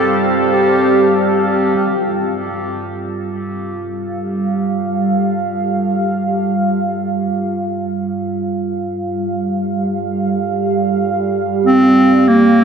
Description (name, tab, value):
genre	ambient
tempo	free time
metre	none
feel	none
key	unclear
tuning	A4 = 439 Hz
part	clear clarinet	melody	0.0-1.4, 11.7-12.6 s	Bb3 to A4	-14 LUFS	equal	dub echo
part	deep dark ambient pad	sustained chords	0.0-12.6 s	G3 to A5	-16 LUFS	right 2 dB	chorus, built-in reverb
room	wet lush hall reverb, RT60 2.7 s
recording	none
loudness	-14 LUFS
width	side -6 dB against mid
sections	0.0-1.8 A section; 1.8-11.7 B section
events	filter sweep on ambient pad 1.8-11.7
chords	0.0 Fadd9/G; 11.7 Gm7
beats	free time